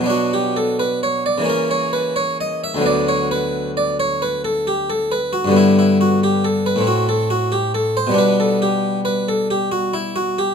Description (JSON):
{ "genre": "classical, baroque-style suite movement for harpsichord", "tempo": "90 BPM (dotted quarters)", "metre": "12/8", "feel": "rubato", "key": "B minor", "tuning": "A4 = 440 Hz", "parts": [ { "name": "harpsichord", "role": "solo", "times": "0.0-10.5 s", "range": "D2 to E5", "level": "-16 LUFS", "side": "equal", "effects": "none" } ], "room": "moderate stone room reverb, RT60 1.0 s", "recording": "minimal, uncompressed stereo recording", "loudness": "-16 LUFS", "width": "side -6 dB against mid", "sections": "0.1-10.5 A section", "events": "none", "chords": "0.1 Bm; 1.5 A#dim/C#; 2.8 Bm/D; 5.5 G; 6.9 Am6; 8.2 G/B", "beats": "| 0.08 0.78 1.47 2.15 | 2.84 3.52 4.20 4.87 | 5.54 6.20 6.86 7.52 | 8.16 8.82 9.48 10.14" }